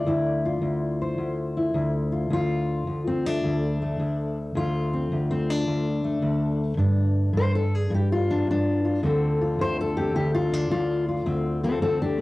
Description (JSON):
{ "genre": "acoustic country blues, solo or duo", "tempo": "107 BPM", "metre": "4/4", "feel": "swing 67% on 8ths", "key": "D minor", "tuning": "A4 = 440 Hz", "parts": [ { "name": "fingerpicked steel-string acoustic guitar", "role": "solo", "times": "0.0-12.2 s", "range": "D2 to D5", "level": "-22 LUFS", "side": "left 1 dB", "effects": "cassette tape" } ], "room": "moderate studio reverb, RT60 0.6 s", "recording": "home recording on cassette", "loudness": "-22 LUFS", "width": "side -19 dB against mid", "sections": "0.0-12.2 A section", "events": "none", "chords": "0.0 Dm9; 6.8 G5; 9.0 Dm7" }